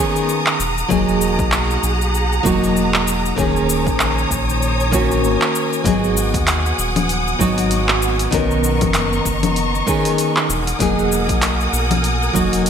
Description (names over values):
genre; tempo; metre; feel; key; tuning
sunset chillout; 97 BPM; 4/4; swing 58% on 16ths; unclear; A4 = 438 Hz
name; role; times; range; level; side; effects
nylon-string guitar; accompaniment; 0.0-12.7 s; D#3 to A#4; -19 LUFS; equal; auto-pan, digital delay
warm symphonic string section; sustained chords; 0.0-12.7 s; B3 to D#6; -22 LUFS; equal; none
deep house drum kit; drums; 0.2-12.7 s; cabasa, congas, handclaps, hi-hat; -22 LUFS; left 1 dB; overdrive
round analog bass; bass; 0.6-12.7 s; D#1 to D#2; -22 LUFS; equal; none
electronic kick drum; drums; 0.9-12.5 s; none; -24 LUFS; equal; overdrive
room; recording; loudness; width
moderate lush hall reverb, RT60 1.8 s; bright 1980s-style digital production; -15 LUFS; side -8 dB against mid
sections
0.0-12.7 A section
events
none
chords
0.0 Bmaj9; 0.6 Emaj9#11; 3.4 D#7sus4; 5.9 G#m7; 8.3 Bmaj9; 10.5 Emaj9#11